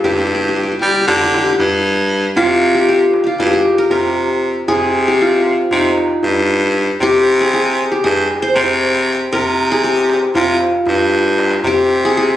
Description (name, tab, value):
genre	Turkish makam ensemble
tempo	232 BPM (eighths)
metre	9/8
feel	straight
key	C makam nihavent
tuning	A4 = 439 Hz
part	qanun	melody	0.0-12.4 s	Eb4 to C5	-15 LUFS	left 1 dB	none
part	raspy baritone saxophone	bass	0.0-12.4 s	G2 to G3	-15 LUFS	equal	none
part	darbuka	percussion	0.0-12.2 s	none	-27 LUFS	equal	none
room	moderate recital hall reverb, RT60 1.5 s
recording	recorded on a phone in the room, studio reverb, compression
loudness	-12 LUFS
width	side -12 dB against mid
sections	0.0-2.4 A section; 2.4-12.4 B section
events	drum fill 11.1-11.7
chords	none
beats	| 0.04 0.30 0.56 0.82 1.07 1.33 1.59 1.85 2.10 | 2.36 2.62 2.88 3.13 3.39 3.65 3.91 4.17 4.42 | 4.68 4.94 5.20 5.46 5.71 5.97 6.23 6.49 6.75 | 7.00 7.26 7.52 7.78 8.04 8.29 8.55 8.81 9.07 | 9.33 9.59 9.84 10.10 10.36 10.62 10.88 11.13 11.39 | 11.65 11.91 12.17